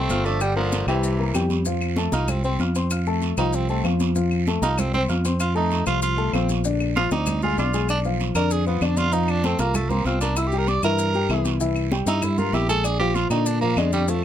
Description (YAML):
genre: Afro-Cuban jazz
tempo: 193 BPM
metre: 4/4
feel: straight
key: F major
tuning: A4 = 440 Hz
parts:
  - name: growling tenor saxophone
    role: melody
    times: 0.0-14.2 s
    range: E3 to D5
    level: -25 LUFS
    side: right 4 dB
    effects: none
  - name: growling tenor saxophone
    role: second line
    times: 0.0-1.5 s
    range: C3 to A3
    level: -31 LUFS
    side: left 6 dB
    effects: slapback echo
  - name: dark concert grand piano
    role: accompaniment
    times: 0.0-14.2 s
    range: D3 to G6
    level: -26 LUFS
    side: left 4 dB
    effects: none
  - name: fingered electric bass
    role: bass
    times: 0.0-14.2 s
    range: G1 to Bb2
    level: -24 LUFS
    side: right 1 dB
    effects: none
  - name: congas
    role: percussion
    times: 0.1-14.2 s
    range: none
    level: -30 LUFS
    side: left 1 dB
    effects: none
  - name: guiro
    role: percussion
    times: 0.1-14.2 s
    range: none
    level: -35 LUFS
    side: right 9 dB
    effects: none
  - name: maracas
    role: percussion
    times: 0.1-14.2 s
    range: none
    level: -35 LUFS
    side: left 4 dB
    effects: none
  - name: claves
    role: percussion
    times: 0.4-13.9 s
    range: none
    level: -34 LUFS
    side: left 4 dB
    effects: none
room: little or no reverb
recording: close, detailed microphones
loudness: -20 LUFS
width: side -10 dB against mid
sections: 0.0-1.7 A section; 1.7-14.2 B section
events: tenor saxophone solo 1.7-14.2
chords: 0.4 Gm7; 1.0 C7; 1.7 F; 6.7 Bb9; 7.9 Bdim; 9.1 F; 10.4 C7; 12.8 Bb